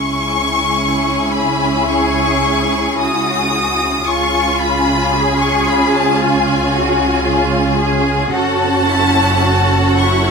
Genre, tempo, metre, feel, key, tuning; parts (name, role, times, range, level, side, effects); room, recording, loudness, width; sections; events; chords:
classical, slow romantic movement for string orchestra; 55 BPM; 4/4; rubato; A4 = 440 Hz
rich studio violin section; melody; 0.0-10.3 s; G#5 to D#6; -18 LUFS; left 3 dB
bright symphonic violin section; second line; 0.0-10.3 s; G#4 to G#5; -19 LUFS; left 4 dB
warm symphonic viola section; accompaniment; 0.0-10.3 s; C#4 to F#4; -18 LUFS; right 2 dB
rich chamber double bass section; bass; 0.0-10.3 s; F#1 to C#2; -21 LUFS; right 2 dB
rich symphonic cello section; bass; 1.9-10.3 s; E4 to G#4; -21 LUFS; equal
moderate large studio reverb, RT60 1.2 s; -12 LUFS; side -5 dB against mid
0.0-10.3 A section
0.0 C#m; 4.1 C#; 8.3 F#m